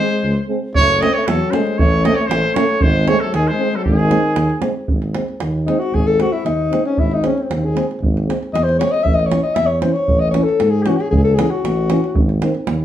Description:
balkan folk, Balkan brass band; 116 BPM; 2/4; straight; G# phrygian dominant; A4 = 442 Hz
clear trumpet; melody; 0.0-4.6 s; G#4 to D#5; -19 LUFS; right 2 dB; plate reverb
mellow alto saxophone; second line; 0.0-12.3 s; D#3 to E5; -19 LUFS; left 3 dB
mellow trombone; accompaniment; 0.0-12.5 s; D#3 to A3; -23 LUFS; right 5 dB
warm euphonium; accompaniment; 0.0-12.5 s; B#3 to C#4; -24 LUFS; left 4 dB
mellow tuba; bass; 0.2-12.8 s; F#1 to G#2; -20 LUFS; equal
davul; percussion; 0.8-12.8 s; -21 LUFS; right 2 dB
wet studio reverb, RT60 0.6 s; heard from further back in the room; -14 LUFS; side -11 dB against mid
0.0-4.9 A section; 4.9-12.8 B section
alto saxophone solo 4.9-12.8
0.0 G#; 0.7 F#m; 1.8 A; 2.8 G#; 9.0 A; 11.1 C#m; 12.2 G#
0.23 | 0.74 1.26 | 1.78 2.29 | 2.81 3.33 | 3.85 4.37 | 4.88 5.40 | 5.92 6.44 | 6.96 7.48 | 8.00 8.52 | 9.04 9.56 | 10.08 10.60 | 11.12 11.63 | 12.15 12.67

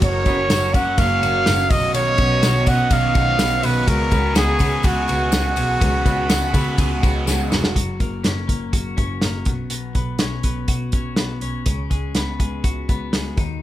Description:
jangly indie pop; 124 BPM; 4/4; straight; F# major; A4 = 440 Hz
breathy trumpet; melody; 0.0-7.3 s; F#4 to F#5; -21 LUFS; right 1 dB; digital delay
biting overdriven guitar; accompaniment; 0.0-7.8 s; B2 to F#4; -26 LUFS; right 4 dB; phaser
warm analog pad; sustained chords; 0.0-7.7 s; B3 to C#6; -30 LUFS; left 1 dB; chorus
twelve-string electric guitar; arpeggios; 0.0-13.6 s; B2 to F#4; -27 LUFS; left 4 dB
dark double bass; bass; 0.0-13.6 s; E#1 to C#3; -23 LUFS; equal
loose indie drum kit; drums; 0.0-13.5 s; hi-hat, kick drum, ride cymbal, snare drum; -21 LUFS; equal
tambourine; percussion; 0.3-7.6 s; -34 LUFS; left 8 dB
little or no reverb; -17 LUFS; side -13 dB against mid
0.0-7.8 A section; 7.8-13.6 B section
drum fill 7.3-7.8
0.0 F#; 1.7 Badd9; 3.9 C#7sus4; 7.8 F#; 9.5 Bsus2; 11.7 C#7sus4
| 0.02 0.50 0.98 1.47 | 1.95 2.43 2.91 3.40 | 3.88 4.36 4.85 5.33 | 5.81 6.30 6.78 7.27 | 7.76 8.24 8.73 9.22 | 9.71 10.20 10.69 11.18 | 11.66 12.15 12.64 13.13 | 13.62

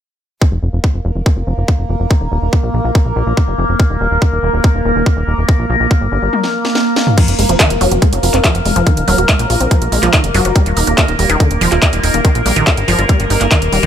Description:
psychedelic trance; 142 BPM; 4/4; straight; A4 = 440 Hz
overtone-sweeping drone; sustained chords; 1.1-13.9 s; Bb3 to Bb4; -18 LUFS; equal; chorus, built-in reverb, phaser, sidechain pumping
electronic kick drum; drums; 0.4-13.6 s; -11 LUFS; equal; overdrive, studio ambience
plucky analog bass; bass; 0.5-13.9 s; Eb1 to Bb1; -16 LUFS; equal
drum and bass drum kit; drums; 6.3-13.9 s; crash cymbal, handclaps, hi-hat, snare drum, toms; -16 LUFS; equal; overdrive, studio ambience
wide unison pluck; riff; 7.2-13.9 s; D3 to Gb4; -17 LUFS; moving between left 3 dB and right 4 dB; auto-pan, sidechain pumping, dub echo
little or no reverb; -11 LUFS; side -9 dB against mid
0.4-7.2 A section; 7.2-13.9 B section
kick drops out 6.3-7.2; drum fill 6.3-7.2; filter sweep on synth arpeggio sound 7.2-13.9
0.4 Ebsus2; 3.8 Eb5; 7.2 F5; 10.6 Eb5
| 0.41 0.84 1.26 1.68 | 2.11 2.53 2.95 3.37 | 3.80 4.22 4.64 5.06 | 5.49 5.91 6.33 6.75 | 7.18 7.60 8.02 8.44 | 8.87 9.29 9.71 10.13 | 10.56 10.98 11.40 11.82 | 12.25 12.67 13.09 13.51

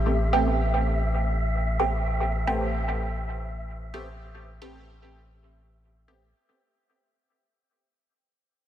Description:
dub techno; 112 BPM; 4/4; straight; A minor; A4 = 444 Hz
round analog bass; bass; 0.0-6.3 s; A1; -27 LUFS; equal
wind-like tuned noise texture; texture; 0.0-6.4 s; E5; -34 LUFS; right 1 dB; built-in reverb
filtered dub chord stab; stabs; 0.3-6.3 s; A3 to G4; -28 LUFS; right 2 dB; phaser, dub echo
moderate huge ambient reverb, RT60 3.9 s; -23 LUFS; side -11 dB against mid
0.0-6.3 A section
fade-out 0.0-6.3
0.0 Am9
0.46 0.99 1.53 | 2.06 2.60 3.13 3.67 | 4.21 4.74 5.28 5.81

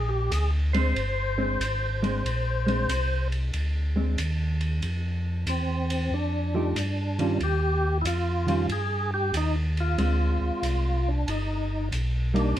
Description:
soul jazz organ trio; 93 BPM; 4/4; swing 66% on 8ths; Bb mixolydian; A4 = 438 Hz
percussive tonewheel organ; melody; 0.0-12.6 s; C4 to C5; -29 LUFS; equal; slow rotary speaker, overdrive, chorus vibrato
mellow tonewheel organ; bass; 0.0-12.6 s; G1 to G2; -26 LUFS; equal; overdrive, chorus vibrato, slow rotary speaker
vintage drum kit; drums; 0.3-12.6 s; hi-hat, ride cymbal; -36 LUFS; right 2 dB
hollow-body jazz guitar; accompaniment; 0.7-12.5 s; Eb3 to G4; -28 LUFS; right 1 dB
light reverb; minimal, uncompressed stereo recording; -24 LUFS; side -12 dB against mid
0.0-12.6 A section
0.0 Bb9; 4.8 F7sus2; 7.4 Ebadd9; 10.0 Fm6; 11.3 G
0.32 0.96 1.61 | 2.25 2.90 3.54 4.18 | 4.83 5.47 6.12 6.76 | 7.41 8.05 8.70 9.34 | 9.99 10.63 11.28 11.92 | 12.56

